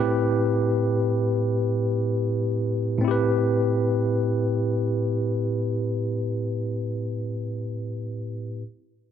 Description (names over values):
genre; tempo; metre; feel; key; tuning
R&B; free time; none; none; A minor; A4 = 439 Hz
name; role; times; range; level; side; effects
tine electric piano; accompaniment; 0.0-8.6 s; A2 to B4; -22 LUFS; equal; medium stereo tremolo
room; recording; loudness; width
light reverb; dense, heavily limited modern master; -22 LUFS; side -9 dB against mid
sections
0.0-3.0 A section; 3.0-6.1 B section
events
none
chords
0.0 Am9